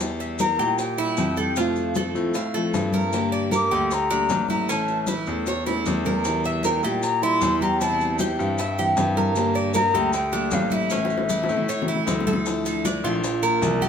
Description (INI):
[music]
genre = latin, Cuban son and guajira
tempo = 154 BPM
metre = 4/4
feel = straight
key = unclear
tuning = A4 = 435 Hz
[part]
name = picked plugged-in steel-string acoustic guitar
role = accompaniment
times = 0.0-13.9 s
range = C3 to G4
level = -28 LUFS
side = left 2 dB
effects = none
[part]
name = clear grand piano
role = bass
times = 0.0-13.9 s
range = A1 to Bb2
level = -28 LUFS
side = left 1 dB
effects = none
[part]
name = bongos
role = percussion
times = 0.0-13.9 s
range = none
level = -32 LUFS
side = left 4 dB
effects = none
[part]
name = congas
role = percussion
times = 0.0-13.9 s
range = none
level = -29 LUFS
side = left 2 dB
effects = none
[part]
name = maracas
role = percussion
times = 0.0-13.9 s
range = none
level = -36 LUFS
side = left 3 dB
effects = none
[part]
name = Cuban tres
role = arpeggios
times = 0.2-13.9 s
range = C#4 to F5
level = -26 LUFS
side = right 5 dB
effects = none
[part]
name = concert flute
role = melody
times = 0.4-12.1 s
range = E5 to D6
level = -25 LUFS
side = left 4 dB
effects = none
[sound]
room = moderate stone room reverb, RT60 1.1 s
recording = band playing live in one room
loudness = -20 LUFS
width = side -7 dB against mid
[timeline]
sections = 0.0-12.5 A section; 12.5-13.9 B section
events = drum fill 5.5-6.3, 10.9-12.5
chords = 0.0 Edim; 1.6 F; 3.1 Gm; 4.7 A; 6.3 Edim; 7.8 C/E; 9.4 Gm; 10.9 A; 12.5 Dmadd9; 13.2 Bb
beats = | 0.01 0.40 0.79 1.18 | 1.57 1.97 2.35 2.75 | 3.14 3.53 3.92 4.31 | 4.70 5.08 5.47 5.86 | 6.25 6.64 7.03 7.42 | 7.81 8.20 8.59 8.98 | 9.36 9.75 10.14 10.53 | 10.92 11.30 11.69 12.08 | 12.46 12.85 13.24 13.62